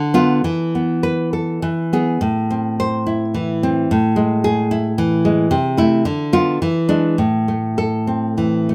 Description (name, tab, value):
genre	romantic piece for solo classical guitar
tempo	99-114 BPM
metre	3/4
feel	rubato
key	A minor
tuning	A4 = 442 Hz
part	nylon-string guitar	solo	0.0-8.7 s	A2 to C5	-18 LUFS	equal	none
room	light reverb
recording	none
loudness	-18 LUFS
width	mono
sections	0.0-8.7 A section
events	none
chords	0.4 Esus4; 1.6 E; 2.2 Am; 3.9 E/A; 5.5 Am/C; 6.1 Bdim/D; 6.6 E7; 7.2 Am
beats	| 0.44 1.04 1.62 | 2.22 2.80 3.35 | 3.90 4.44 4.97 | 5.52 6.06 6.61 | 7.19 7.79 8.39